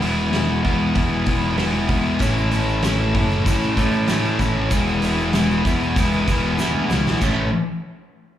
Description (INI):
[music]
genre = indie rock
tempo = 96 BPM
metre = 4/4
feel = straight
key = A major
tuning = A4 = 437 Hz
[part]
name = thick fuzz guitar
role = riff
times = 0.0-7.5 s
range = E2 to E4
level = -22 LUFS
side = left 4 dB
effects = distortion, slapback echo
[part]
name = thick fuzz guitar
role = riff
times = 0.0-7.5 s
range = E3 to A4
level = -24 LUFS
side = right 4 dB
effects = distortion, wide subtle chorus, tape echo, slapback echo
[part]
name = modern bright picked electric bass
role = bass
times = 0.0-7.5 s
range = E1 to A2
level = -23 LUFS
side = right 1 dB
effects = none
[part]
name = loose indie drum kit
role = drums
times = 0.0-7.4 s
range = crash cymbal, hi-hat, kick drum, snare drum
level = -24 LUFS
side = right 1 dB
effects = none
[part]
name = tube shaker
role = percussion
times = 2.2-7.5 s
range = none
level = -40 LUFS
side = right 2 dB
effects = none
[sound]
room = studio reverb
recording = live gig heard through the venue's PA, club reverb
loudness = -17 LUFS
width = side -11 dB against mid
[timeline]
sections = 0.0-7.2 A section; 7.2-8.4 B section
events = drum fill 6.6-7.2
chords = 0.0 E; 2.2 A; 4.7 E; 7.2 A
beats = 0.34 0.97 1.59 | 2.22 2.84 3.47 4.09 | 4.72 5.34 5.97 6.59 | 7.22